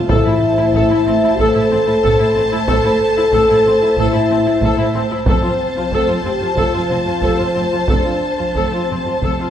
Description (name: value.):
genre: cinematic, epic orchestral film score.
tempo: 92 BPM.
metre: 4/4.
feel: straight.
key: A minor.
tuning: A4 = 440 Hz.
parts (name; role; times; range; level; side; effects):
rich studio violin section; melody; 0.0-9.5 s; A5; -24 LUFS; left 3 dB; none.
rich symphonic violin section; second line; 0.0-9.5 s; C5; -22 LUFS; equal; none.
dark French horn section; sustained chords; 0.0-9.5 s; C4 to A4; -17 LUFS; left 2 dB; none.
clear symphonic viola section; accompaniment; 0.1-9.5 s; C4 to A4; -22 LUFS; equal; none.
clear symphonic double bass section; bass; 0.1-9.3 s; F1 to A1; -25 LUFS; right 2 dB; none.
rich symphonic cello section; bass; 0.1-9.4 s; F2 to A2; -22 LUFS; right 2 dB; none.
taiko ensemble; drums; 0.1-9.5 s; none; -22 LUFS; equal; none.
timpani; percussion; 0.1-1.0 s; A2; -24 LUFS; equal; none.
room: wet recital hall reverb, RT60 1.6 s.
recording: recorded in a church or concert hall.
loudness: -13 LUFS.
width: side -10 dB against mid.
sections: 0.0-9.5 A section.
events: none.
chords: 0.1 Am; 5.3 F.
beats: | 0.09 0.74 1.39 2.04 | 2.69 3.33 3.98 4.62 | 5.27 5.92 6.57 7.22 | 7.88 8.55 9.22.